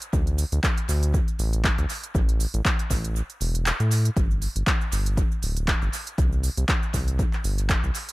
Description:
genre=deep house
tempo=119 BPM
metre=4/4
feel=swing 56% on 16ths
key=unclear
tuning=A4 = 440 Hz
part: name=deep house drum kit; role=drums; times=0.0-8.1 s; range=handclaps, hi-hat, shaker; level=-29 LUFS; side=equal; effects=tape echo
part: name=round analog bass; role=bass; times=0.1-7.9 s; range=D1 to A2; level=-24 LUFS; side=equal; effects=sidechain pumping
part: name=electronic kick drum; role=drums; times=0.1-7.8 s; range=none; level=-24 LUFS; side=equal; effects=none
room=little or no reverb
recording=echo-heavy mix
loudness=-22 LUFS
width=side -20 dB against mid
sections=0.0-4.2 A section; 4.2-8.1 A section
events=drop 0.0-4.2, 4.2-8.1; kick drops out 3.2-4.2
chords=none

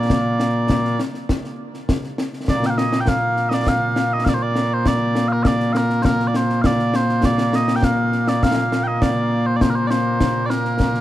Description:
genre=scottish traditional, Scottish pipe music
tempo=101 BPM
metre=4/4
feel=straight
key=Bb major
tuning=A4 = 444 Hz
part: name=mellow small bagpipes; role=melody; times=0.0-11.0 s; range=Bb2 to G5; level=-18 LUFS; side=equal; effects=none
part: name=concert snare drum and concert bass drum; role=drums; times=0.1-11.0 s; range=none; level=-22 LUFS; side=left 1 dB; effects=none
room=light reverb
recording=dark, warm production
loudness=-17 LUFS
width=side -13 dB against mid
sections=0.0-11.0 A section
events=none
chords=none

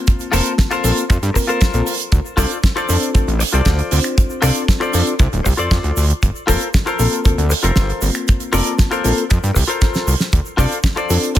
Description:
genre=nu-disco, nu disco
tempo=117 BPM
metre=4/4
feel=straight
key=G minor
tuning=A4 = 443 Hz
part: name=reed electric piano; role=accompaniment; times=0.0-11.4 s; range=Bb3 to A5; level=-24 LUFS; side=left 2 dB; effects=sidechain pumping, tape echo
part: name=damped 70s drum kit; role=drums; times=0.1-11.4 s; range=finger snaps, hi-hat, snare drum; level=-22 LUFS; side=right 3 dB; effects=small room ambience
part: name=kick drum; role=drums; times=0.1-11.4 s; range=none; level=-15 LUFS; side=equal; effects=small room ambience
part: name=egg shaker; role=percussion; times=0.1-11.4 s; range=none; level=-31 LUFS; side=right 1 dB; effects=tape echo
part: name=direct-recorded clean electric guitar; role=riff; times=0.3-11.3 s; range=F4 to D5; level=-22 LUFS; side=left 3 dB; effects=lush chorus, vintage 12-bit sampler grit, tape echo
part: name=fat analog bass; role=bass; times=0.3-11.4 s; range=D1 to G2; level=-17 LUFS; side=equal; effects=tube saturation, sidechain pumping
room=studio reverb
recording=echo-heavy mix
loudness=-14 LUFS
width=side -12 dB against mid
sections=0.0-11.4 A section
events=drum fill 9.8-10.3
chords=0.0 Gm11 (rootless); 2.1 Dm7; 6.2 Gm11; 10.3 Dm7

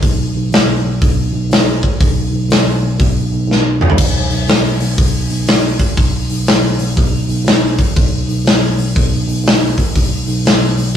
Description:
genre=blues rock power trio and southern rock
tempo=121 BPM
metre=4/4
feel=swing 64% on 8ths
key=unclear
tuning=A4 = 439 Hz
part: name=tine electric piano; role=bass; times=0.0-11.0 s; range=A1 to B1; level=-17 LUFS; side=right 1 dB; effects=phaser
part: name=big rock drum kit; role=drums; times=0.0-10.9 s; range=crash cymbal, hi-hat, kick drum, snare drum, toms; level=-13 LUFS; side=equal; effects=none
room=light reverb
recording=rough rehearsal-room recording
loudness=-11 LUFS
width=side -9 dB against mid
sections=0.0-4.0 A section; 4.0-11.0 B section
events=drum fill 3.5-4.0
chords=none

